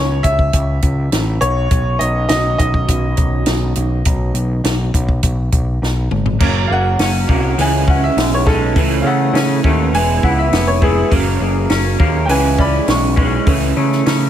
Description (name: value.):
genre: indie rock.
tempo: 102 BPM.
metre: 4/4.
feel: straight.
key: unclear.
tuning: A4 = 438 Hz.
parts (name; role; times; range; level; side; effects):
bright upright piano; melody; 0.0-13.5 s; B3 to C#6; -20 LUFS; equal; ping-pong delay.
electric guitar through a small old amp; riff; 0.0-14.3 s; F#2 to E4; -21 LUFS; right 6 dB; ensemble chorus, ping-pong delay.
twangy electric guitar; riff; 0.0-14.3 s; E3 to G#4; -24 LUFS; left 8 dB; lush chorus.
growling picked electric bass; bass; 0.0-14.3 s; E1 to C#3; -17 LUFS; equal; overdrive.
compact cocktail drum kit; drums; 0.2-14.2 s; crash cymbal, hi-hat, kick drum, snare drum, toms; -18 LUFS; equal; none.
room: light reverb, studio ambience.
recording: none.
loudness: -13 LUFS.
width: side -10 dB against mid.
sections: 0.0-6.4 A section; 6.4-14.3 B section.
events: drum fill 5.8-6.4; upright piano solo 6.4-14.3.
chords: 0.0 C#m7; 1.4 Badd9; 6.4 F#; 7.6 C#m; 8.8 A/C#; 9.9 E; 11.1 F#; 12.3 C#m; 13.5 A/C#.